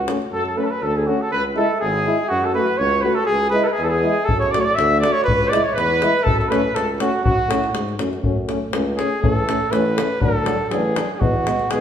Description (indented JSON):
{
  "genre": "balkan folk, Balkan brass band",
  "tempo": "122 BPM",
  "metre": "2/4",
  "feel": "swing 55% on 16ths",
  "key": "F# minor",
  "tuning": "A4 = 440 Hz",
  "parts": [
    { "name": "clear flugelhorn", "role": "melody", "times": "0.0-11.8 s", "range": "F#4 to E5", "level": "-20 LUFS", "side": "equal", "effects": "none" },
    { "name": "warm trumpet", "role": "second line", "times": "0.0-7.7 s", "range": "F#4 to E5", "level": "-26 LUFS", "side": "right 3 dB", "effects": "none" },
    { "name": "warm tuba", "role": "bass", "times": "0.0-11.8 s", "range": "G#1 to A2", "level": "-25 LUFS", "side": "equal", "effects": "none" },
    { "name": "warm euphonium", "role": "accompaniment", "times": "0.1-11.8 s", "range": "F#3 to A3", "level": "-26 LUFS", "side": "right 4 dB", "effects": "none" },
    { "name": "warm trombone", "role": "accompaniment", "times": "0.1-11.8 s", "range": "B3 to F#4", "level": "-26 LUFS", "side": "left 4 dB", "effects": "none" },
    { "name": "davul", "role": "percussion", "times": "0.1-0.3, 4.3-11.8 s", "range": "none", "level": "-24 LUFS", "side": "left 2 dB", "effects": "none" }
  ],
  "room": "wet large studio reverb, RT60 1.4 s",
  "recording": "band playing live in one room",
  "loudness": "-17 LUFS",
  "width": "side -9 dB against mid",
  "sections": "0.3-8.2 A section; 8.2-11.8 B section",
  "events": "flugelhorn solo 8.2-11.8",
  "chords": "0.3 F#m; 1.3 C#m; 2.3 F#m; 3.3 C#m; 4.3 F#m; 5.3 C#m; 6.3 F#m; 9.2 A; 10.2 D; 11.2 E"
}